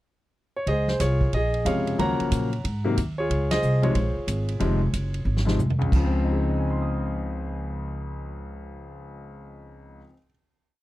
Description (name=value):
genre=jazz piano trio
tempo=182 BPM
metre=4/4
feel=swing 64% on 8ths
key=Db major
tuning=A4 = 440 Hz
part: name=clear concert grand piano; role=melody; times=0.6-10.3 s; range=Db2 to Eb6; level=-27 LUFS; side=left 1 dB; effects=none
part: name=upright bass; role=bass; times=0.7-10.0 s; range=F1 to Bb2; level=-26 LUFS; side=equal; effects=none
part: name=vintage drum kit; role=drums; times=0.7-6.0 s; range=crash cymbal, hi-hat, kick drum, ride cymbal, snare drum, toms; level=-28 LUFS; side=right 1 dB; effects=none
room=little or no reverb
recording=dry, close 1970s-style studio recording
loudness=-22 LUFS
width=side -16 dB against mid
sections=0.0-0.7 pickup bar; 0.7-5.9 A section; 5.9-8.6 final chord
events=band accent 3.5; drum fill 5.3-5.9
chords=0.0 N.C.; 0.7 Dbmaj7; 1.3 Bbm7; 2.0 Ebm7; 2.6 Ab7(no3); 3.3 Dbmaj7